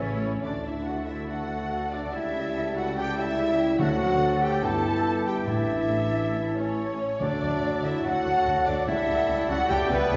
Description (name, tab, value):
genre	classical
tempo	143 BPM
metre	4/4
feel	straight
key	D major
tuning	A4 = 440 Hz
part	warm symphonic violin section	melody	0.0-10.2 s	E4 to F#5	-43 LUFS	equal	none
part	clear clarinet	second line	0.0-10.2 s	B3 to A4	-36 LUFS	equal	none
part	clear oboe	second line	0.0-10.2 s	G4 to E5	-41 LUFS	equal	none
part	concert flute	second line	0.0-10.2 s	A5 to A6	-46 LUFS	equal	none
part	dark symphonic violin section	second line	0.0-10.2 s	B4 to A5	-35 LUFS	equal	none
part	bright symphonic viola section	accompaniment	0.0-10.2 s	B3 to A4	-36 LUFS	equal	none
part	warm bassoon	accompaniment	0.0-10.2 s	E3 to A3	-36 LUFS	equal	none
part	mellow French horn section	sustained chords	0.0-10.2 s	C#3 to G4	-36 LUFS	equal	none
part	dark trumpet section	stabs	0.0-10.2 s	B4 to A5	-32 LUFS	equal	none
part	dark tuba	bass	0.0-10.2 s	G1 to D2	-37 LUFS	equal	none
part	warm studio cello section	bass	0.0-10.2 s	G2 to D3	-39 LUFS	equal	none
part	warm symphonic double bass section	bass	0.0-10.2 s	G1 to D2	-39 LUFS	equal	none
part	timpani	percussion	3.8-7.8 s	A2 to D3	-36 LUFS	equal	none
room	wet scoring stage reverb, RT60 1.6 s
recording	heard from further back in the room, nothing above 7.5 kHz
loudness	-26 LUFS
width	mono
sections	0.4-10.2 A section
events	none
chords	0.4 D; 2.1 A7/C#; 3.8 D; 4.6 Em/G; 5.5 Asus4; 6.3 A; 7.2 D; 8.9 A7/C#